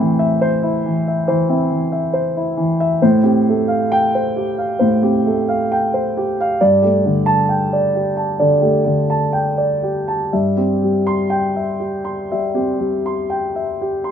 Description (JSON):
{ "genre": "neoclassical minimalist piano", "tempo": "59-70 BPM", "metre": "4/4", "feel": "rubato", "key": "unclear", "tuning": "A4 = 439 Hz", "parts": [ { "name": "dark grand piano", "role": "solo", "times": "0.0-14.1 s", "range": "G2 to C6", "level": "-15 LUFS", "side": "equal", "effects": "none" } ], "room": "light reverb", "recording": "minimal, uncompressed stereo recording", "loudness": "-15 LUFS", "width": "side -8 dB against mid", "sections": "0.0-14.1 A section", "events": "none", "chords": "0.0 Am; 3.0 Fadd9/A; 6.6 Gsus2; 10.3 C/G", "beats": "0.41 1.27 2.14 | 3.02 3.89 4.78 5.70 | 6.60 7.50 8.39 9.32 | 10.31 11.31 12.31 13.30" }